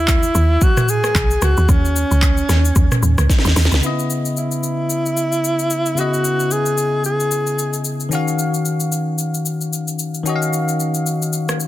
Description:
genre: amapiano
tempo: 112 BPM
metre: 4/4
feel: swing 58% on 16ths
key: unclear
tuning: A4 = 444 Hz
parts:
  - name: warm alto saxophone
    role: melody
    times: 0.0-7.8 s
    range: C#4 to G#4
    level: -20 LUFS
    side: equal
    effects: ping-pong delay
  - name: woody log drum bass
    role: bass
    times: 0.0-3.8 s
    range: B1 to D#2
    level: -15 LUFS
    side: equal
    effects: none
  - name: afro-pop drum kit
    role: drums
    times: 0.1-11.7 s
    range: handclaps, hi-hat, kick drum, rim click, shaker, snare drum, toms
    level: -19 LUFS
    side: equal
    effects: none
  - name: bell-like tine electric piano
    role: accompaniment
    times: 3.8-11.7 s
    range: C#3 to E#5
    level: -20 LUFS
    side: left 2 dB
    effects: analog chorus
room: digital ambience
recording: dense, heavily limited modern master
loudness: -15 LUFS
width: side -14 dB against mid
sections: 0.0-3.8 A section; 3.8-11.7 B section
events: drop 0.0-3.8; drum fill 3.3-3.8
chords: 0.0 Badd9 (rootless); 3.8 C#m9; 8.1 D#m9

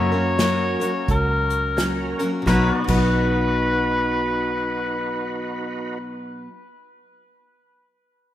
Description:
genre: honky-tonk and classic country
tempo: 87 BPM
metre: 4/4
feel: swing 61% on 8ths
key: B major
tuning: A4 = 436 Hz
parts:
  - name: mellow harmonica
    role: melody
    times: 0.0-6.0 s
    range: A#4 to C#5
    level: -25 LUFS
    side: left 1 dB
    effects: tape echo
  - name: picked steel-string acoustic guitar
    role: accompaniment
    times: 0.0-6.6 s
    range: F#2 to A#4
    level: -24 LUFS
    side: left 2 dB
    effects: none
  - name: pedal steel guitar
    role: sustained chords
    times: 0.0-6.0 s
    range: F#4 to D#5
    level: -30 LUFS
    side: equal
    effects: none
  - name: vintage muted fingered electric bass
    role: bass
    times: 0.0-6.5 s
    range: B1 to F#2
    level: -25 LUFS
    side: right 1 dB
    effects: none
  - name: overdriven tonewheel organ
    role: accompaniment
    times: 0.4-6.0 s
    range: C#4 to B4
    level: -30 LUFS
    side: right 4 dB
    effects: slow rotary speaker, chorus vibrato
  - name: unplugged drum kit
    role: drums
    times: 0.4-3.0 s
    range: crash cymbal, hi-hat, kick drum, snare drum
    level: -27 LUFS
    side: equal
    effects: none
room: moderate lush hall reverb, RT60 2.2 s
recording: rough home demo mix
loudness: -19 LUFS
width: side -12 dB against mid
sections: 0.0-2.5 A section; 2.5-5.2 B section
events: none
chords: 0.0 F#; 2.5 B

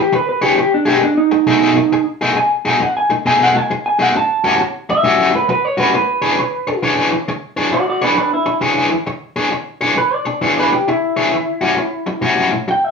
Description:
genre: blues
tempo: 134 BPM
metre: 4/4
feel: swing 65% on 8ths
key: E mixolydian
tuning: A4 = 441 Hz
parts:
  - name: electric guitar through a small old amp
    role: melody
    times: 0.0-12.9 s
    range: D4 to A5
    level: -15 LUFS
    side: right 1 dB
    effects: none
  - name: overdriven electric guitar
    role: riff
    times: 0.1-12.7 s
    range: A2 to C#5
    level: -16 LUFS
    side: left 2 dB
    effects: harmonic tremolo
room: wet studio reverb, RT60 0.6 s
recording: band playing live in one room, studio ambience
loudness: -13 LUFS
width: side -5 dB against mid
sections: 0.0-7.7 A section; 7.7-12.9 B section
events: clean electric guitar solo 0.0-7.7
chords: 0.0 E6; 0.6 B6; 4.1 A6; 5.9 E6; 11.3 A6

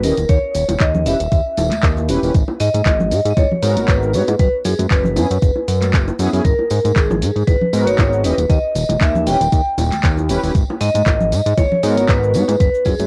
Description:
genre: nu-disco, nu disco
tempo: 117 BPM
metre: 4/4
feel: swing 55% on 16ths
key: G# minor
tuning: A4 = 441 Hz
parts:
  - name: vibraphone with medium hard mallets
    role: melody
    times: 0.0-13.0 s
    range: G#4 to G5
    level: -22 LUFS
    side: equal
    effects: analog delay
  - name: mellow synth brass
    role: accompaniment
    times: 0.0-12.5 s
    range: B3 to D#5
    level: -24 LUFS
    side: equal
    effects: chorus, sidechain pumping, cassette tape
  - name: fat analog bass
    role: bass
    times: 0.0-13.1 s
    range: D#1 to G#2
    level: -21 LUFS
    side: equal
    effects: tube saturation
  - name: house drum kit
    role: drums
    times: 0.0-13.1 s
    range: cabasa, handclaps, hi-hat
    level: -28 LUFS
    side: equal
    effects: cassette tape
  - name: tambourine, bongos and congas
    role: percussion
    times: 0.0-13.1 s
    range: none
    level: -27 LUFS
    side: equal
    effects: none
  - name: electronic kick drum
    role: drums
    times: 0.3-13.0 s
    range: none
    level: -18 LUFS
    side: equal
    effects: overdrive, cassette tape
room: light reverb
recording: home recording on cassette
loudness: -16 LUFS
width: mono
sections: 0.0-13.1 A section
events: none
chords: 0.0 D#7b9b13; 2.3 G#m7; 4.4 F#9sus4; 6.4 G#m7; 8.2 D#7b9b13; 10.5 G#m7

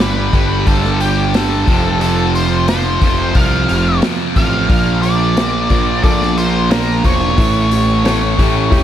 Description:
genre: classic rock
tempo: 89 BPM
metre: 4/4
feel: straight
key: unclear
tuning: A4 = 440 Hz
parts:
  - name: octave-fuzz lead guitar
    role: melody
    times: 0.0-8.8 s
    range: G4 to F5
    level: -19 LUFS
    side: equal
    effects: distortion
  - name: overdriven electric guitar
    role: riff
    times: 0.0-8.8 s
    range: F2 to Bb3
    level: -19 LUFS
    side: right 11 dB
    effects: none
  - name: tight distorted guitar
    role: riff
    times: 0.0-8.8 s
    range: F2 to Bb3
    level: -21 LUFS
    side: left 14 dB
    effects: distortion
  - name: fuzz picked electric bass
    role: bass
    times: 0.0-8.8 s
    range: E1 to C2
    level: -18 LUFS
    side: left 1 dB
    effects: overdrive
  - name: vintage drum kit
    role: drums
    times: 0.0-8.8 s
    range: hi-hat, kick drum, snare drum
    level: -17 LUFS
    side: equal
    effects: none
  - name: warm concert grand piano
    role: accompaniment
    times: 4.7-8.8 s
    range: C#4 to C5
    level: -23 LUFS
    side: left 1 dB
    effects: none
room: studio ambience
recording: none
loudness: -12 LUFS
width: side -10 dB against mid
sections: 0.0-8.8 A section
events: none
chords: 0.0 G; 1.7 F; 4.7 Bb; 7.4 A

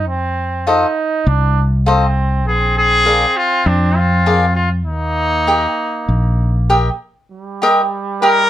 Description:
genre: mexican folk, mariachi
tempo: 100 BPM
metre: 4/4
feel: straight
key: Eb major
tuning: A4 = 445 Hz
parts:
  - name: warm trumpet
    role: second line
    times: 0.0-8.5 s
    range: G3 to Eb4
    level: -22 LUFS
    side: right 4 dB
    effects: none
  - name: mellow fretless electric bass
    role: bass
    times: 0.0-6.9 s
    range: Bb1 to F2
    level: -16 LUFS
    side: equal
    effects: none
  - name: cavaquinho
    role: accompaniment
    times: 0.7-8.4 s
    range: F4 to G5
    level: -14 LUFS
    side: left 1 dB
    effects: none
  - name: clear trumpet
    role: melody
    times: 2.5-8.5 s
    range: D4 to Bb4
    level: -15 LUFS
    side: left 1 dB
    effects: none
room: light reverb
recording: dark, warm production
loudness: -13 LUFS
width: side -12 dB against mid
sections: 0.0-7.3 A section; 7.3-8.5 B section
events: none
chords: 0.1 F7; 2.5 Bb7; 4.9 Eb

